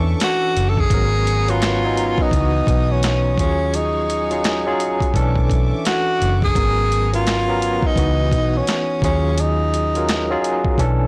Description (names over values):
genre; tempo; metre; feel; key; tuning
R&B, neo-soul; 85 BPM; 4/4; swing 63% on 16ths; unclear; A4 = 440 Hz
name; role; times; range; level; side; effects
barky tine electric piano; accompaniment; 0.0-11.1 s; E3 to B4; -26 LUFS; equal; medium tremolo
warm symphonic string section; sustained chords; 0.0-9.4 s; B3 to D#6; -35 LUFS; equal; none
vintage muted fingered electric bass; bass; 0.0-11.1 s; F#1 to E2; -22 LUFS; equal; transformer saturation
breathy tenor saxophone; melody; 0.2-10.8 s; C#4 to A4; -23 LUFS; equal; none
boom bap sampler-style drum kit; drums; 0.2-11.0 s; handclaps, hi-hat, kick drum, snare drum; -24 LUFS; equal; none
room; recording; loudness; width
light reverb; blown-out, overdriven recording, overdrive; -18 LUFS; mono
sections
0.0-11.1 A section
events
none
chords
0.0 Bm11 (rootless); 0.9 G#m11; 2.3 C#m11; 3.4 D#m11; 5.1 Bm11; 6.5 G#m11; 8.0 C#m11; 9.0 D#m11